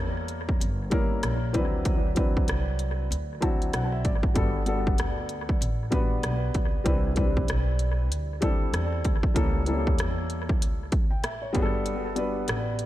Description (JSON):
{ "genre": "hip hop, jazz-hop", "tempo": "96 BPM", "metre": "4/4", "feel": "swing 61% on 16ths", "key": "G major", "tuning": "A4 = 441 Hz", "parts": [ { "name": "dark upright piano", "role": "accompaniment", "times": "0.0-12.9 s", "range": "E3 to A5", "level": "-30 LUFS", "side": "left 1 dB", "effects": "analog delay" }, { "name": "upright bass", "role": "bass", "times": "0.0-12.9 s", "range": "G1 to E2", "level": "-30 LUFS", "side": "equal", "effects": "none" }, { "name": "industrial drum kit", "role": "drums", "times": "0.2-12.9 s", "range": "hi-hat, kick drum, rim click", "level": "-26 LUFS", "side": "equal", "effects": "none" } ], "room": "small room ambience", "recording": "echo-heavy mix", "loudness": "-24 LUFS", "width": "side -14 dB against mid", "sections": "0.0-12.9 A section", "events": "upright piano fill 3.1-4.4; break 11.9-12.9", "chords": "0.0 A7b9 (rootless); 1.5 D13; 4.4 Gmaj9; 6.9 Cmaj9; 9.4 A7b9/C#; 11.5 Gmaj9" }